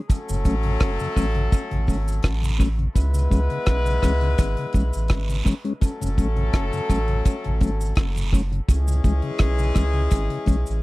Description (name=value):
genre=roots reggae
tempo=84 BPM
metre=4/4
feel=straight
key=C# minor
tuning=A4 = 437 Hz
part: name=clear horn section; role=second line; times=0.1-10.8 s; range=E3 to B4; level=-28 LUFS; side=left 2 dB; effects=dub echo
part: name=deep reggae drum kit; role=drums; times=0.1-10.8 s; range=hi-hat, kick drum, rim click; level=-19 LUFS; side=equal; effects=none
part: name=cabasa and guiro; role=percussion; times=0.1-10.8 s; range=none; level=-38 LUFS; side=right 5 dB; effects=none
part: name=mellow tonewheel organ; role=accompaniment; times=0.3-10.6 s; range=F#2 to C#4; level=-28 LUFS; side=left 2 dB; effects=slow rotary speaker, tape echo
part: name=soft dub sub bass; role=bass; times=0.3-10.8 s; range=F#1 to C#2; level=-22 LUFS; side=equal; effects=none
room=little or no reverb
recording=dry, close 1970s-style studio recording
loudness=-19 LUFS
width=side -20 dB against mid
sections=0.0-10.8 A section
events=none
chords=0.1 F#m; 3.0 C#m; 5.8 F#m; 8.7 C#m